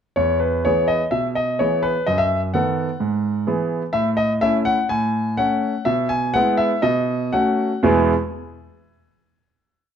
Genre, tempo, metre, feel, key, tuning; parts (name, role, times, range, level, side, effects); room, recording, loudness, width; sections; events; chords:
classical-period piano sonatina; 115-129 BPM; 4/4; straight; E major; A4 = 444 Hz
clear concert grand piano; solo; 0.2-8.1 s; E2 to G#5; -18 LUFS; equal
moderate large studio reverb, RT60 1.3 s; dark, warm production; -18 LUFS; side -8 dB against mid
0.2-7.8 theme; 7.8-9.9 final chord
slowing down 3.0-7.8
0.2 E; 2.1 B7/F#; 3.0 E/G#; 3.9 A; 4.9 F#m/A; 5.9 E/B; 6.8 B9; 7.8 E